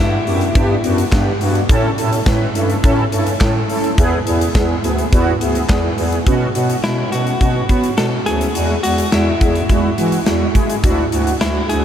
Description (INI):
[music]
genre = synth-pop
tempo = 105 BPM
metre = 4/4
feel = straight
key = B dorian from 6.3 s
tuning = A4 = 445 Hz
[part]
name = direct-recorded clean electric guitar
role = melody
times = 0.0-1.1, 6.8-11.8 s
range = E4 to A4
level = -23 LUFS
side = left 2 dB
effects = tape echo
[part]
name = mellow synth brass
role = accompaniment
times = 0.0-11.8 s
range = G#3 to B4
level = -19 LUFS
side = right 1 dB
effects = chorus
[part]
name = mellow bass clarinet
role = bass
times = 0.0-11.8 s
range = D2 to B3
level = -20 LUFS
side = equal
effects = none
[part]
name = huge arena drum kit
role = drums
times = 0.3-11.8 s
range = handclaps, hi-hat, kick drum, snare drum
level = -17 LUFS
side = equal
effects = none
[sound]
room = moderate huge ambient reverb, RT60 7.1 s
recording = dreamy mix soaked in reverb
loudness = -14 LUFS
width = side -9 dB against mid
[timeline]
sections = 0.0-6.3 A section; 6.3-11.8 B section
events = none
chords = 0.0 G; 1.7 A; 4.0 E; 6.3 Bsus2; 8.6 Eadd9; 10.8 Dadd9